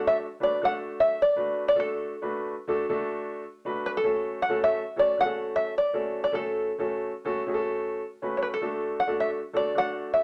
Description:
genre	soul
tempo	105 BPM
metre	4/4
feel	swing 62% on 8ths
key	D major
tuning	A4 = 439 Hz
part	open-back banjo	melody	0.0-10.2 s	A4 to F#5	-27 LUFS	equal	none
part	warm baby grand piano	accompaniment	0.0-10.2 s	A3 to B4	-32 LUFS	equal	none
room	moderate studio reverb, RT60 0.7 s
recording	none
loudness	-27 LUFS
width	mono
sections	0.0-10.2 A section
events	none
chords	0.0 D; 4.0 F#m; 8.6 D

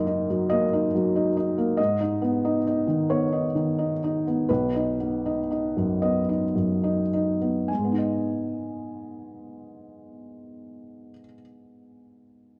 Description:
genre	classical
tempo	35-47 BPM (dotted quarters)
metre	6/8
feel	rubato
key	G# minor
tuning	A4 = 441 Hz
part	felt-muted upright piano	accompaniment	0.0-12.6 s	B1 to G#5	-26 LUFS	equal	none
room	moderate recital hall reverb, RT60 1.5 s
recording	dark, warm production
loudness	-25 LUFS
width	mono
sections	0.0-7.7 A section; 7.7-11.0 B section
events	slowing down 0.5-7.7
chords	0.0 D#m/F#; 1.8 G#m; 4.5 B; 7.7 G#m

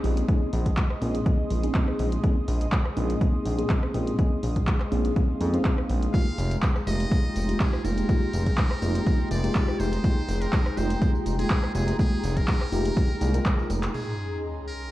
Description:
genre	deep house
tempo	123 BPM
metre	4/4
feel	swing 54% on 16ths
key	Bb dorian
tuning	A4 = 440 Hz
part	warm analog pad	sustained chords	0.0-14.9 s	Ab3 to Eb6	-37 LUFS	left 2 dB	chorus, sidechain pumping
part	mellow FM electric piano	stabs	0.0-13.9 s	Ab3 to C5	-30 LUFS	equal	chorus, phaser, analog delay
part	smooth synth bass	bass	0.0-13.9 s	F1 to F2	-26 LUFS	equal	sidechain pumping
part	deep house drum kit	drums	0.0-14.0 s	crash cymbal, handclaps, hi-hat, rim click, tambourine	-35 LUFS	equal	overdrive, studio reverb
part	granular cloud pad	texture	0.0-14.9 s	Db4 to C6	-37 LUFS	equal	built-in reverb, sidechain pumping
part	electronic kick drum	drums	0.3-13.6 s	none	-23 LUFS	equal	overdrive, studio reverb
part	trumpet with metal mute	melody	6.1-14.9 s	Ab4 to F5	-37 LUFS	equal	tape echo
part	sub drop	sound effects	13.9-14.9 s	none	-33 LUFS	equal	none
room	digital ambience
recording	played on a big sound system in a bare room, cassette tape, large studio reverb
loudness	-22 LUFS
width	side -16 dB against mid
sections	0.0-13.9 A section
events	drum fill 13.5-13.9; band accent 13.8; impact 13.9-14.9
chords	0.0 Bbm11; 6.1 Fm11; 13.9 Bbm11

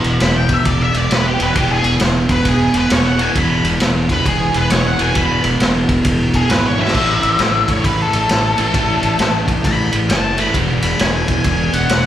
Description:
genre	blues rock power trio and southern rock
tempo	133 BPM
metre	4/4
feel	swing 64% on 8ths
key	E major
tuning	A4 = 440 Hz
part	crunchy overdriven guitar	riff	0.0-12.1 s	E2 to A3	-19 LUFS	right 1 dB	none
part	raw garage drum kit	drums	0.0-12.0 s	crash cymbal, kick drum, ride cymbal, snare drum, toms	-18 LUFS	equal	none
part	fuzz fingered electric bass	bass	0.1-12.1 s	E1 to A2	-20 LUFS	equal	overdrive
part	octave-fuzz lead guitar	melody	0.2-12.1 s	G4 to B5	-19 LUFS	left 1 dB	wah, distortion, slapback echo
room	light reverb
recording	live gig heard through the venue's PA, club reverb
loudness	-13 LUFS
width	side -11 dB against mid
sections	0.0-12.1 A section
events	lead electric guitar solo 0.0-12.1; drum fill 6.7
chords	0.0 E5; 7.0 A5; 10.6 E

